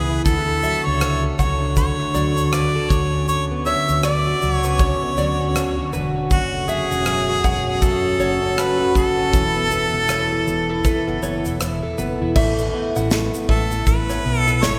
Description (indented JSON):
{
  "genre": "acoustic pop",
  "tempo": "79 BPM",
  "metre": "4/4",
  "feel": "swing 60% on 16ths",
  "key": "A major",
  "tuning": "A4 = 440 Hz",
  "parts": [
    { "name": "clear harmonica", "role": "melody", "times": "0.0-14.8 s", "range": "F#4 to E5", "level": "-25 LUFS", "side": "equal", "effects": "none" },
    { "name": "fingerpicked plugged-in twelve-string acoustic guitar", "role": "accompaniment", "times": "0.0-14.8 s", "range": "F#2 to A4", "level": "-25 LUFS", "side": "equal", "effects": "none" },
    { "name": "open-back banjo", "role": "arpeggios", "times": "0.0-14.8 s", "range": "A4 to F#5", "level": "-33 LUFS", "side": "equal", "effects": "none" },
    { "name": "hollow-body short-scale fingered electric bass", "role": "bass", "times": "0.0-14.8 s", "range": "E1 to D2", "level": "-26 LUFS", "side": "equal", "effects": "none" },
    { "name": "modern studio drum kit", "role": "drums", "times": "0.3-14.8 s", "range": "crash cymbal, kick drum, rim click, shaker, snare drum", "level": "-25 LUFS", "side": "equal", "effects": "none" }
  ],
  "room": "wet cathedral reverb, RT60 4.3 s",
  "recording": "recorded in a church or concert hall",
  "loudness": "-20 LUFS",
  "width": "mono",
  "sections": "0.0-12.4 A section; 12.4-14.8 B section",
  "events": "none",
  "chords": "0.3 D; 2.9 Bmadd9; 9.3 Esus4; 12.4 Asus2"
}